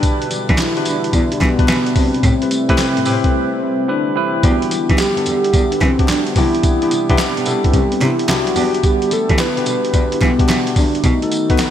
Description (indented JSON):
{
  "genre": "R&B, new jack swing",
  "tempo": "109 BPM",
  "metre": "4/4",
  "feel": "swing 67% on 16ths",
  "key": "E minor",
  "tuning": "A4 = 444 Hz",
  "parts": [
    { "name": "soft octave-layered synth lead", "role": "melody", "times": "0.0-11.7 s", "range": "B3 to B4", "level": "-19 LUFS", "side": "left 1 dB", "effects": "chorus" },
    { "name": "tine electric piano", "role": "accompaniment", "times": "0.0-11.7 s", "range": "B3 to F#5", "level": "-21 LUFS", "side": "right 1 dB", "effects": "slow stereo tremolo" },
    { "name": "sweeping resonant pad", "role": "sustained chords", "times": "0.0-11.7 s", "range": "B2 to F#4", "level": "-26 LUFS", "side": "left 1 dB", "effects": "lush chorus" },
    { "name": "boom bap sampler-style drum kit", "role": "drums", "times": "0.0-11.7 s", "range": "handclaps, hi-hat, kick drum, snare drum, tambourine", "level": "-17 LUFS", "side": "equal", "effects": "vintage 12-bit sampler grit, gated reverb" },
    { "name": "warm cello", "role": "bass", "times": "0.3-11.6 s", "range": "C2 to B3", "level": "-21 LUFS", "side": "equal", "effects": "none" },
    { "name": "mellow synth brass", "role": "stabs", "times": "0.5-11.7 s", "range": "C4 to B4", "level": "-28 LUFS", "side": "left 3 dB", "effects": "none" },
    { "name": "group handclap", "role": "percussion", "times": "0.6-11.7 s", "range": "none", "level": "-33 LUFS", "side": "right 2 dB", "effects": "none" }
  ],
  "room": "light reverb, digital ambience",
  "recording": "bright 1980s-style digital production",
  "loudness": "-13 LUFS",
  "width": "side -10 dB against mid",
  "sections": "0.0-11.7 A section",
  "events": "break 3.3-4.4",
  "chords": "0.0 Em7; 2.2 Am7; 4.4 Em7; 6.4 Cmaj7; 8.6 Em7; 11.0 B7"
}